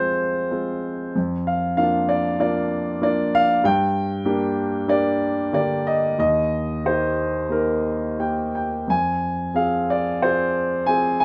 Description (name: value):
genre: classical, lyrical solo piano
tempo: 85-99 BPM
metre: 4/4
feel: rubato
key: F dorian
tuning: A4 = 440 Hz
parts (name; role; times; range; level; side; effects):
- dark concert grand piano; solo; 0.0-11.2 s; Eb2 to Ab5; -22 LUFS; equal; none
room: light reverb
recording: none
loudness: -22 LUFS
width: mono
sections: 0.0-11.2 A section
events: none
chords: 0.0 Fm; 1.2 Bb/F; 3.6 Gm; 6.2 Eb; 8.9 Fm